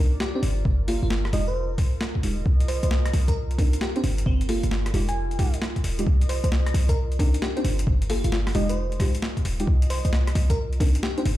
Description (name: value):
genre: UK garage, two-step garage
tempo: 133 BPM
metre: 4/4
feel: swing 65% on 16ths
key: C minor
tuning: A4 = 435 Hz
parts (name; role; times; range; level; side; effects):
- deep mellow chord stab; stabs; 0.0-11.2 s; Ab3 to C5; -30 LUFS; equal; chorus, ping-pong delay
- short 808-style bass; bass; 0.0-11.4 s; Eb1 to C2; -23 LUFS; equal; tube saturation
- warbly tape-like pad; texture; 0.1-11.4 s; F4 to Eb5; -37 LUFS; right 2 dB; chorus, built-in reverb, sidechain pumping
- bell-like FM electric piano; melody; 0.2-11.2 s; C4 to Ab5; -32 LUFS; equal; chorus, ping-pong delay
- boom bap sampler-style drum kit; drums; 0.2-11.4 s; hi-hat, rim click, snare drum; -32 LUFS; equal; overdrive
- electronic kick drum; drums; 0.7-10.9 s; none; -23 LUFS; equal; overdrive
room: digital ambience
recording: played on a big sound system in a bare room, large studio reverb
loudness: -21 LUFS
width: side -14 dB against mid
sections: 0.0-11.4 A section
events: none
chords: 0.4 Gm9; 1.3 Fm9; 2.5 Cm9; 4.0 Gm9; 4.9 Fm9; 6.1 Cm9; 7.6 Gm9; 8.5 Fm9; 9.7 Cm9